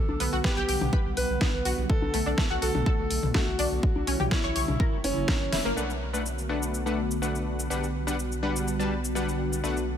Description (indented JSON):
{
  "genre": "progressive house",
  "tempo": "124 BPM",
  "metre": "4/4",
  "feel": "straight",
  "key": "B minor",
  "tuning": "A4 = 441 Hz",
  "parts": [
    { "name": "clear concert grand piano", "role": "melody", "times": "0.0-5.7 s", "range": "C#4 to B4", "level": "-33 LUFS", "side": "equal", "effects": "sidechain pumping, dub echo" },
    { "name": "airy breathy pad", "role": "sustained chords", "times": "0.1-10.0 s", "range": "C#3 to F#5", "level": "-33 LUFS", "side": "right 1 dB", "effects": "chorus, vintage 12-bit sampler grit, sidechain pumping" },
    { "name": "saturated sub bass", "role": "bass", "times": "0.1-10.0 s", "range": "E1 to B1", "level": "-32 LUFS", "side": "equal", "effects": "sidechain pumping" },
    { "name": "electronic congas and toms", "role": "percussion", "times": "0.1-5.4 s", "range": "none", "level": "-32 LUFS", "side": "left 4 dB", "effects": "sidechain pumping on perc, sidechain pumping on toms" },
    { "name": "analog pluck", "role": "arpeggios", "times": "0.2-5.7 s", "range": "A3 to C#5", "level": "-32 LUFS", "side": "left 1 dB", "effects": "ensemble chorus, sidechain pumping, dub echo" },
    { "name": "pop drum kit", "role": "drums", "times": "0.2-9.9 s", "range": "cabasa, hi-hat, snare drum", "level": "-32 LUFS", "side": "equal", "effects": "overdrive" },
    { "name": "electronic kick drum", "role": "drums", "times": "0.4-5.4 s", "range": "none", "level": "-26 LUFS", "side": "equal", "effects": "none" },
    { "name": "supersaw stab", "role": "stabs", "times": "5.8-9.8 s", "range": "G3 to A5", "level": "-30 LUFS", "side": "left 3 dB", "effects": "sidechain pumping, low-pass filter, dub echo" }
  ],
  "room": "light reverb",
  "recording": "none",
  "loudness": "-24 LUFS",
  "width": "side -9 dB against mid",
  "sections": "0.0-5.8 A section; 5.8-10.0 B section",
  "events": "drum fill 5.5; band accent 5.5; filter sweep on analog synth pad 5.8-10.0",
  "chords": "0.0 Gmaj7/B; 1.9 Bm7; 3.8 C#dim/B; 4.8 F#7; 5.8 Bm7; 7.7 Gmaj7/B"
}